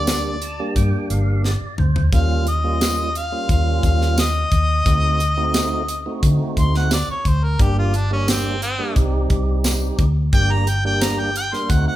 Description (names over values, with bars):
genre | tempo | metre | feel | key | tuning
straight-eighth soul blues | 88 BPM | 4/4 | straight | G minor | A4 = 440 Hz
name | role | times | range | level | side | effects
clear harmonica | melody | 0.0-12.0 s | C4 to C6 | -23 LUFS | left 1 dB | overdrive
tonewheel organ | accompaniment | 0.0-12.0 s | G3 to A5 | -26 LUFS | right 2 dB | slow rotary speaker
vintage muted fingered electric bass | bass | 0.0-11.8 s | G1 to D3 | -20 LUFS | equal | none
tight funk drum kit | drums | 0.1-11.9 s | hi-hat, kick drum, snare drum, tambourine, toms | -20 LUFS | equal | none
room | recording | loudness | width
light reverb | band playing live in one room | -16 LUFS | side -14 dB against mid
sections
0.0-12.0 A section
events
tonewheel organ fill 0.1-2.1; drum fill 1.4-2.1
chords
0.0 Gm; 2.1 Eb7; 4.9 D7b9; 7.6 Gm; 9.0 Cm; 10.3 Gm